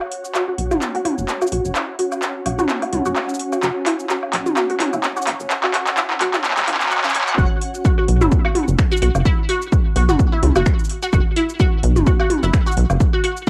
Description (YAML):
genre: minimal techno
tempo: 128 BPM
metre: 4/4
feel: swing 56% on 16ths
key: unclear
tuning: A4 = 438 Hz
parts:
  - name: electronic woodblock and toms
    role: percussion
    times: 0.0-13.0 s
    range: none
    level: -25 LUFS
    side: equal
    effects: none
  - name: ethereal airy pad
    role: texture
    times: 0.0-7.4 s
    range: F#4 to F#5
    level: -32 LUFS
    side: equal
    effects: ensemble chorus, built-in reverb, sidechain pumping, cassette tape
  - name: swarming drone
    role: texture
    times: 0.5-7.4 s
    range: C#4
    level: -35 LUFS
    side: equal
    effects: built-in reverb, sidechain pumping, cassette tape
  - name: booming analog drum machine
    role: drums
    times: 0.1-13.5 s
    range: finger snaps, handclaps, hi-hat, shaker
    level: -25 LUFS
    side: equal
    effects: overdrive, high-pass filter on snare, high-pass filter on perc, high-pass filter on hats, high-pass filter on room
  - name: resonant blip pluck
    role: riff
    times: 0.3-13.5 s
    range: C#4 to F#5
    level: -25 LUFS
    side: equal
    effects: phaser, ensemble chorus, sidechain pumping, cassette tape, tape echo
  - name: rubbery square bass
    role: bass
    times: 0.6-13.0 s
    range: F#1 to F#2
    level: -21 LUFS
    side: equal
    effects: sidechain pumping
  - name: electronic kick drum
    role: drums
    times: 7.4-13.5 s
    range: none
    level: -19 LUFS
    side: equal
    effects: overdrive
room: light reverb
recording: home recording on cassette, high-pass filter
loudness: -18 LUFS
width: mono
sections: 0.0-7.4 A section; 7.4-13.5 B section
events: build-up 0.0-7.4; drum fill 0.0-7.4; filter sweep on synth arpeggio sound 0.0-7.4; filter sweep 0.0-7.4; drop 7.4-13.5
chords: 0.0 F#5